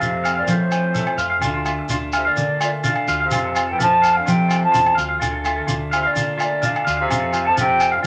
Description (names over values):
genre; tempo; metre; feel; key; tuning
highlife guitar band; 127 BPM; 4/4; straight; D minor; A4 = 441 Hz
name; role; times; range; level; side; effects
mellow hollow silver concert flute; melody; 0.0-8.1 s; C5 to A5; -22 LUFS; equal; none
breathy tenor saxophone; second line; 0.0-8.1 s; A2 to F3; -31 LUFS; equal; none
electric guitar at the edge of break-up; accompaniment; 0.0-8.1 s; F2 to F4; -32 LUFS; equal; none
clean electric guitar; arpeggios; 0.0-8.1 s; F4 to F5; -26 LUFS; equal; spring reverb
hollow-body short-scale fingered electric bass; bass; 0.0-8.1 s; D2 to F3; -28 LUFS; equal; none
shekere; percussion; 0.0-8.1 s; none; -30 LUFS; equal; none
agogo bells; percussion; 0.3-7.9 s; none; -28 LUFS; equal; none
room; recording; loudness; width
moderate small room reverb, RT60 0.5 s; none; -19 LUFS; mono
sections
0.0-8.1 A section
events
none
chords
0.0 F; 1.4 Dm; 3.3 F; 5.2 Dm; 7.1 F